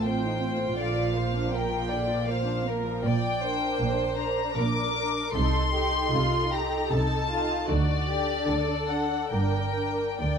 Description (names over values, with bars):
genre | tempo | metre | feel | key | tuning
classical, slow romantic movement for string orchestra | 65-82 BPM | 3/4 | rubato | Bb major, G minor from 3.0 s | A4 = 440 Hz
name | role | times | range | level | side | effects
rich studio violin section | melody | 0.0-10.4 s | D5 to D6 | -30 LUFS | left 3 dB | none
warm symphonic violin section | second line | 0.0-10.4 s | F4 to D5 | -31 LUFS | left 2 dB | none
dark symphonic viola section | accompaniment | 0.0-10.2 s | D3 to Bb4 | -32 LUFS | right 2 dB | none
dark chamber double bass section | bass | 0.0-10.4 s | G1 to D2 | -30 LUFS | right 2 dB | none
warm symphonic cello section | bass | 0.0-10.4 s | D2 to D3 | -32 LUFS | right 2 dB | none
room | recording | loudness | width
moderate scoring stage reverb, RT60 1.9 s | close, detailed microphones | -24 LUFS | side -6 dB against mid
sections
0.0-10.4 A section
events
none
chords
0.0 F7/A; 0.8 Bb; 3.0 Gm/Bb; 5.3 Adim/C; 7.7 D5; 9.3 Gm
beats
0.05 | 0.78 1.52 2.28 | 3.04 3.80 4.57 | 5.34 6.13 6.92 | 7.70 8.48 9.32 | 10.21